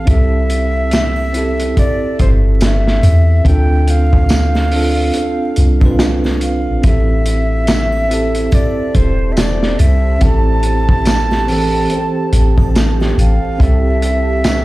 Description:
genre	trip hop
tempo	71 BPM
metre	4/4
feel	swing 59% on 16ths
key	A minor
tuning	A4 = 440 Hz
part	breathy concert flute	melody	0.0-14.6 s	C5 to A5	-21 LUFS	equal	tape echo
part	bell-like tine electric piano	accompaniment	0.0-14.6 s	E3 to B4	-19 LUFS	right 2 dB	harmonic tremolo, tape echo
part	soft 808-style bass	bass	0.1-14.6 s	E1 to E2	-13 LUFS	equal	none
part	crunchy breakbeat drum kit	drums	0.1-14.6 s	hi-hat, kick drum, snare drum	-16 LUFS	equal	none
part	tambourine and triangle	percussion	0.9-14.6 s	none	-36 LUFS	left 2 dB	none
part	deep dark ambient pad	sustained chords	8.7-14.6 s	G4 to A5	-26 LUFS	right 2 dB	chorus, built-in reverb, vintage 12-bit sampler grit
room	studio reverb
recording	played on a big sound system in a bare room, large studio reverb, vinyl crackle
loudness	-11 LUFS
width	side -18 dB against mid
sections	0.0-14.6 A section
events	none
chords	0.1 C6; 3.5 Dm7; 6.8 Am7; 13.6 C6

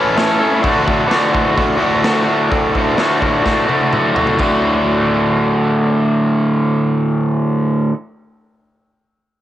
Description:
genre	garage rock duo or trio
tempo	128 BPM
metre	4/4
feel	straight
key	D major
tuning	A4 = 440 Hz
part	raw garage guitar	riff	0.0-7.9 s	D2 to A4	-13 LUFS	equal	overdrive, cassette tape
part	raw garage drum kit	drums	0.2-4.5 s	crash cymbal, hi-hat, kick drum, snare drum, toms	-22 LUFS	equal	cassette tape
room	studio ambience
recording	home recording on cassette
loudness	-13 LUFS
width	side -12 dB against mid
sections	0.0-4.4 A section; 4.4-8.2 B section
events	drum fill 3.5-4.4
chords	0.0 A; 0.6 D

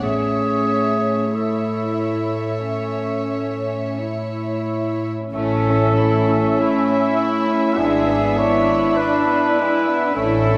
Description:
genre	classical, slow romantic movement for symphony orchestra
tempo	44-51 BPM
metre	4/4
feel	rubato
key	A major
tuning	A4 = 440 Hz
part	dark studio violin section	melody	0.0-10.6 s	E5	-32 LUFS	equal	none
part	mellow clarinet	second line	0.0-10.6 s	E4 to A4	-28 LUFS	equal	none
part	warm studio violin section	second line	0.0-10.6 s	G#3 to C#5	-30 LUFS	equal	none
part	dark studio viola section	accompaniment	0.0-10.6 s	C#4 to E4	-28 LUFS	equal	none
part	warm studio cello section	bass	0.0-10.6 s	A2 to E4	-28 LUFS	equal	none
part	warm studio double bass section	bass	0.0-10.6 s	G#1 to A1	-26 LUFS	equal	none
part	warm oboe	second line	5.3-10.6 s	E5	-30 LUFS	equal	none
part	warm bassoon	accompaniment	5.3-10.6 s	C#4 to D4	-27 LUFS	equal	none
part	warm trumpet	stabs	5.3-10.6 s	E4 to C#5	-24 LUFS	equal	none
part	mellow French horn section	sustained chords	5.4-10.6 s	C#4 to E4	-27 LUFS	equal	none
room	moderate scoring stage reverb, RT60 1.7 s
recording	none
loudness	-19 LUFS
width	mono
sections	0.0-5.3 A section; 5.3-10.6 B section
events	none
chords	0.0 A; 7.8 E7/G#

